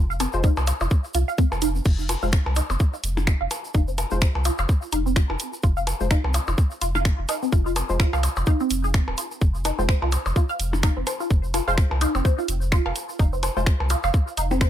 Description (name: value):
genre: minimal techno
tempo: 127 BPM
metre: 4/4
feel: swing 57% on 16ths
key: F minor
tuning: A4 = 441 Hz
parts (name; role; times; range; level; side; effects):
- resonant blip pluck; riff; 0.0-14.6 s; C4 to F5; -28 LUFS; right 1 dB; phaser, lush chorus, sidechain pumping, digital delay
- saturated sub bass; bass; 0.0-14.7 s; Eb1 to C2; -25 LUFS; equal; sidechain pumping
- tube shaker; percussion; 0.1-14.7 s; none; -36 LUFS; right 3 dB; none
- garage drum kit; drums; 0.2-14.7 s; crash cymbal, finger snaps, hi-hat; -29 LUFS; equal; overdrive
- percussion blips; percussion; 0.2-14.6 s; none; -31 LUFS; left 2 dB; tape echo
- filtered dub chord stab; stabs; 0.3-13.6 s; Ab3 to C5; -32 LUFS; left 5 dB; chorus, cassette tape, tape echo
- electronic kick drum; drums; 0.4-14.7 s; none; -19 LUFS; equal; overdrive
room: digital ambience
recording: none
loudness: -20 LUFS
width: side -11 dB against mid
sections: 0.0-14.7 A section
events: none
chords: 0.0 F5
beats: 0.44 0.91 1.38 | 1.85 2.33 2.80 3.27 | 3.75 4.22 4.69 5.16 | 5.63 6.11 6.58 7.05 | 7.52 8.00 8.47 8.94 | 9.41 9.89 10.36 10.83 | 11.30 11.78 12.25 12.72 | 13.19 13.67 14.14 14.61